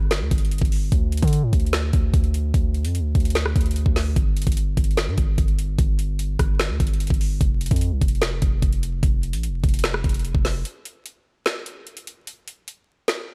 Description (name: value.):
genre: hip hop, trap.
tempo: 148 BPM.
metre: 4/4.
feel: half-time.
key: unclear.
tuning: A4 = 445 Hz.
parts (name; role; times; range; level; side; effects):
long sustained 808-style bass; bass; 0.0-10.6 s; F1 to D3; -25 LUFS; equal; none.
trap drum kit; drums; 0.1-13.2 s; finger snaps, hi-hat, kick drum, rim click, snare drum; -24 LUFS; equal; none.
room: little or no reverb.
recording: vinyl crackle.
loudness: -22 LUFS.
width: mono.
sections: 0.0-10.7 A section; 10.7-13.3 B section.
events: break 10.7-13.3.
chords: none.